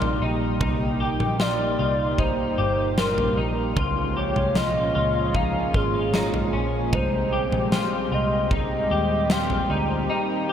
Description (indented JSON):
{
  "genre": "dream pop",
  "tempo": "76 BPM",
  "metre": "4/4",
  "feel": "straight",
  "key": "unclear",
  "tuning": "A4 = 440 Hz",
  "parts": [
    { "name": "warbly nostalgic lead", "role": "melody", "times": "0.0-9.9 s", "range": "Ab4 to G5", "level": "-27 LUFS", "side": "equal", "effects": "chorus, tape echo, shimmer reverb" },
    { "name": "lush unison pad", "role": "sustained chords", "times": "0.0-10.5 s", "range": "Bb2 to G4", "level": "-27 LUFS", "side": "equal", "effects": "chorus, shimmer reverb" },
    { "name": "clean electric guitar", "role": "arpeggios", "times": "0.0-10.5 s", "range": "Db4 to G4", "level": "-28 LUFS", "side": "left 3 dB", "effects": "ensemble chorus, tape echo, shimmer reverb" },
    { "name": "vintage muted picked electric bass", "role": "bass", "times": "0.0-10.1 s", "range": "G1 to Eb2", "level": "-28 LUFS", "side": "equal", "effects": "none" },
    { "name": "huge arena drum kit", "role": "drums", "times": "0.0-9.7 s", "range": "kick drum, snare drum, toms", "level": "-28 LUFS", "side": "equal", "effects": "none" }
  ],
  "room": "moderate huge ambient reverb, RT60 4.5 s",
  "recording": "none",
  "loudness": "-21 LUFS",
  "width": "side -9 dB against mid",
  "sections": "0.0-10.5 A section",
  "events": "none",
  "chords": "0.0 Ebmaj7; 0.6 Cm7; 3.8 Dbmaj7; 6.9 Abmaj7"
}